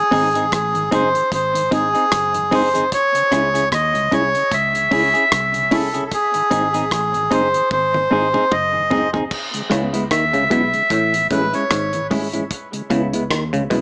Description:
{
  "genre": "roots reggae",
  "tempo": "75 BPM",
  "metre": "4/4",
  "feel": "swing 56% on 16ths",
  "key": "C# minor from 9.3 s",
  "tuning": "A4 = 440 Hz",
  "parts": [
    { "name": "melodica", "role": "melody", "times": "0.0-12.1 s", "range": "G#4 to E5", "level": "-17 LUFS", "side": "equal", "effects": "dub echo, plate reverb" },
    { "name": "mellow tonewheel organ", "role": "accompaniment", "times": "0.0-13.8 s", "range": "G#2 to G#4", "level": "-25 LUFS", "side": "equal", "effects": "chorus vibrato, stopped rotary speaker" },
    { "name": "semi-hollow electric guitar", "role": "accompaniment", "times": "0.1-13.8 s", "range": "G#3 to G#4", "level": "-22 LUFS", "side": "equal", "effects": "dub echo, plate reverb" },
    { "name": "vintage muted fingered electric bass", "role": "bass", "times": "0.1-13.8 s", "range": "F#1 to D#2", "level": "-27 LUFS", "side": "equal", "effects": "none" },
    { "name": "damped 70s drum kit", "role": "drums", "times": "0.1-13.8 s", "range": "crash cymbal, hi-hat, kick drum, rim click, toms", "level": "-25 LUFS", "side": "equal", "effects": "dub echo" },
    { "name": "muted clav", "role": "riff", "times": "9.7-13.8 s", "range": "G#2 to D#3", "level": "-22 LUFS", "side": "equal", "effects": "none" }
  ],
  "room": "moderate studio reverb, RT60 0.5 s",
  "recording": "small speaker sound",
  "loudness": "-15 LUFS",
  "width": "side -40 dB against mid",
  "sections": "0.0-9.3 A section; 9.3-13.8 B section",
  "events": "drum fill 7.7-9.3",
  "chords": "0.0 G#; 2.9 C#m; 6.1 G#; 9.3 C#m7; 10.9 Amaj7; 12.5 C#m7",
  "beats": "0.52 1.32 2.12 | 2.92 3.72 4.52 5.32 | 6.12 6.92 7.71 8.51 | 9.31 10.11 10.91 11.71 | 12.51 13.31"
}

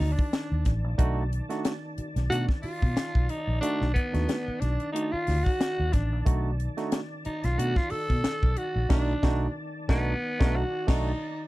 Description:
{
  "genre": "funk",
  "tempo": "91 BPM",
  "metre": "4/4",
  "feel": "swing 56% on 16ths",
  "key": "unclear",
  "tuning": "A4 = 440 Hz",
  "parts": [
    { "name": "growling tenor saxophone", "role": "melody", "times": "0.0-11.5 s", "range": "B3 to A4", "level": "-31 LUFS", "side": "equal", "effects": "none" },
    { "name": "mellow tonewheel organ", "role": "sustained chords", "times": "0.0-11.5 s", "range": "D#3 to A5", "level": "-39 LUFS", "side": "equal", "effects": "slow rotary speaker, overdrive, chorus vibrato" },
    { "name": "barky tine electric piano", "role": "stabs", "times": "0.0-11.1 s", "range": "A3 to F#4", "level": "-34 LUFS", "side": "right 3 dB", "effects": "overdrive" },
    { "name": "vintage muted fingered electric bass", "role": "bass", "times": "0.0-11.1 s", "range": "A1 to B2", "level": "-27 LUFS", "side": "equal", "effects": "none" },
    { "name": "tight funk drum kit", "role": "drums", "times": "0.0-11.1 s", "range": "crash cymbal, hi-hat, kick drum, snare drum", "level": "-26 LUFS", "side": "equal", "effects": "none" }
  ],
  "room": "studio ambience",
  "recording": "dry, close 1970s-style studio recording",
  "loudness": "-25 LUFS",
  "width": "side -18 dB against mid",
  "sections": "0.0-11.5 A section",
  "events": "tenor saxophone solo 0.0-11.5; band accent 8.9-11.5",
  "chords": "0.0 B7#9",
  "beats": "0.33 | 0.99 1.65 2.31 2.96 | 3.62 4.28 4.94 5.60 | 6.26 6.92 7.58 8.24 | 8.90 9.56 10.22 10.88"
}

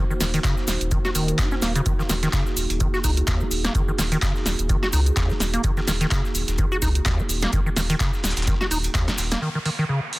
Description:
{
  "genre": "acid house",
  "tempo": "127 BPM",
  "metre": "4/4",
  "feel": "swing 56% on 16ths",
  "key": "Eb dorian",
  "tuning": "A4 = 441 Hz",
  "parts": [
    { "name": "dark analog pad", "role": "sustained chords", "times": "0.0-10.2 s", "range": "Bb3 to Db5", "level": "-32 LUFS", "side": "right 2 dB", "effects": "chorus, sidechain pumping" },
    { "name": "acid bass, square", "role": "riff", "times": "0.0-10.0 s", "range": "Eb2 to Gb4", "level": "-26 LUFS", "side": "equal", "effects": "sidechain pumping, dub echo" },
    { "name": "cabasa", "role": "percussion", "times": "0.1-9.4 s", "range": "none", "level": "-34 LUFS", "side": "left 4 dB", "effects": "none" },
    { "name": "round analog bass", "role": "bass", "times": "0.2-9.4 s", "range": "Eb1 to Db2", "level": "-24 LUFS", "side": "equal", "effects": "sidechain pumping" },
    { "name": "breakbeat sampler-style drum kit", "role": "drums", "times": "0.2-9.4 s", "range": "hi-hat, shaker, snare drum", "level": "-34 LUFS", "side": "left 1 dB", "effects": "sidechain pumping on perc, high-pass filter on perc, high-pass filter on snare, sidechain pumping on hats, high-pass filter on hats" },
    { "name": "punchy analog drum machine", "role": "drums", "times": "0.2-10.2 s", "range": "handclaps, hi-hat, snare drum", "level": "-27 LUFS", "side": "right 1 dB", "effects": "none" },
    { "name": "electronic kick drum", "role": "drums", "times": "0.4-9.1 s", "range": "none", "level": "-24 LUFS", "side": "equal", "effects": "none" },
    { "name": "downlifter", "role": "sound effects", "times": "9.4-10.2 s", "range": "none", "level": "-32 LUFS", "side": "right 1 dB", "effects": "none" }
  ],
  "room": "little or no reverb",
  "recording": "dense, heavily limited modern master",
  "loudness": "-20 LUFS",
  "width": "side -20 dB against mid",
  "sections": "0.0-9.4 A section",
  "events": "drum fill 9.1-9.4",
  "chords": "0.0 Ebm7",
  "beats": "0.44 0.92 1.39 | 1.86 2.33 2.80 3.28 | 3.75 4.22 4.69 5.17 | 5.64 6.11 6.58 7.06 | 7.53 8.00 8.47 8.95 | 9.42 9.89"
}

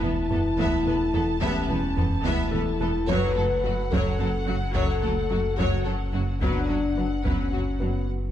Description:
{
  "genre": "cinematic, hybrid orchestral and electronic film score",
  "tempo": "72 BPM (dotted quarters)",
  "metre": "6/8",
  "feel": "straight",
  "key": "unclear",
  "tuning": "A4 = 440 Hz",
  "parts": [
    { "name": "warm symphonic violin section", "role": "melody", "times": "0.0-8.1 s", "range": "F#5 to A5", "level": "-36 LUFS", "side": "left 1 dB", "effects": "none" },
    { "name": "warm symphonic violin section", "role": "second line", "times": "0.0-7.9 s", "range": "D4 to E5", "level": "-34 LUFS", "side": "left 3 dB", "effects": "none" },
    { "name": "clear symphonic viola section", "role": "accompaniment", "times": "0.0-7.9 s", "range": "F#3 to B3", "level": "-34 LUFS", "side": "equal", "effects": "none" },
    { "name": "dark French horn section", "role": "sustained chords", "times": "0.0-8.1 s", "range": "C#4 to B4", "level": "-28 LUFS", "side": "left 3 dB", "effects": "none" },
    { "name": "thumb-piano-like synth pluck", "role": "arpeggios", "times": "0.0-8.0 s", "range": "F#3 to B4", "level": "-35 LUFS", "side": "right 2 dB", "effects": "chorus, digital delay" },
    { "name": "rich symphonic double bass section", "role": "bass", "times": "0.0-7.9 s", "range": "E1 to F#1", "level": "-32 LUFS", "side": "right 3 dB", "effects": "none" },
    { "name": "sub bass with octave", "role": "bass", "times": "0.0-8.3 s", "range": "E1 to F#1", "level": "-30 LUFS", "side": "equal", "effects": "none" },
    { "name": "warm symphonic cello section", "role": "bass", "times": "0.0-7.9 s", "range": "E2 to F#2", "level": "-32 LUFS", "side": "right 2 dB", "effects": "none" },
    { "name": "felt-muted upright piano", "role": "texture", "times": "0.0-8.3 s", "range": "B3 to B4", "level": "-40 LUFS", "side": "left 4 dB", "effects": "none" },
    { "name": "taiko ensemble", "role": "drums", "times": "0.3-7.8 s", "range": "none", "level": "-31 LUFS", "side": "equal", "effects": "none" }
  ],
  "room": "moderate scoring stage reverb, RT60 1.9 s",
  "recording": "dark, warm production",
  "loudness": "-22 LUFS",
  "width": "side -11 dB against mid",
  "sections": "0.0-8.3 A section",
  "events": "break 8.1",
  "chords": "0.0 Asus2/E; 3.1 F#m; 6.4 Bm/F#",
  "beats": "0.58 | 1.42 2.25 | 3.08 3.92 | 4.75 5.58 | 6.42 7.25 | 8.09"
}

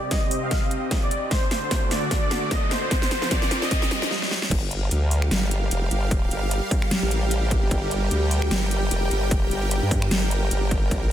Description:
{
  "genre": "heavy wobble dubstep",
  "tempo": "150 BPM",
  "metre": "4/4",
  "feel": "swing 55% on 16ths, half-time",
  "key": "G minor",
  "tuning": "A4 = 439 Hz",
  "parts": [
    { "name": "soft supersaw", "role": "melody", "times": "0.0-3.8 s", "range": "C5 to F5", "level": "-29 LUFS", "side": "equal", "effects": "low-pass filter, ping-pong delay" },
    { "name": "supersaw pad", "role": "sustained chords", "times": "0.0-11.1 s", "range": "C3 to G5", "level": "-28 LUFS", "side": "right 1 dB", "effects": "sidechain pumping, low-pass filter" },
    { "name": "riser and swell", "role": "sound effects", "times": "0.0-4.5 s", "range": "none", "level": "-32 LUFS", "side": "equal", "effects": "none" },
    { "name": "dubstep drum kit", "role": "drums", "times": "0.1-11.0 s", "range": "crash cymbal, finger snaps, hi-hat, snare drum", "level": "-27 LUFS", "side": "equal", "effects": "high-pass filter on hats, studio reverb, high-pass filter on snare, high-pass filter on toms, high-pass filter on cymbals" },
    { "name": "electronic kick drum", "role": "drums", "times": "0.1-11.0 s", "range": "none", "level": "-24 LUFS", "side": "equal", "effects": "distortion, studio reverb" },
    { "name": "formant-sweep wobble bass", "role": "bass", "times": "4.5-11.1 s", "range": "F1 to G2", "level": "-23 LUFS", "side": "equal", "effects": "chorus, overdrive" }
  ],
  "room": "light reverb, digital ambience",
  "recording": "dense, heavily limited modern master",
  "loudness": "-21 LUFS",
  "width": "side -11 dB against mid",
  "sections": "0.0-4.5 A section; 4.5-11.1 B section",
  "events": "build-up 0.0-4.5; drum fill 0.0-4.1, 4.1-4.5; riser 0.0-4.1; filter sweep on supersaw synth 0.0-4.5; swell 3.7-4.5; drop 4.5-11.1",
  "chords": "0.0 Cm; 1.3 D; 2.9 Fsus4; 4.5 Gm7",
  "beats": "0.11 0.51 0.91 | 1.31 1.71 2.11 2.51 | 2.91 3.31 3.71 4.11 | 4.51 4.91 5.31 5.71 | 6.11 6.51 6.91 7.31 | 7.71 8.11 8.51 8.91 | 9.31 9.71 10.11 10.51 | 10.91"
}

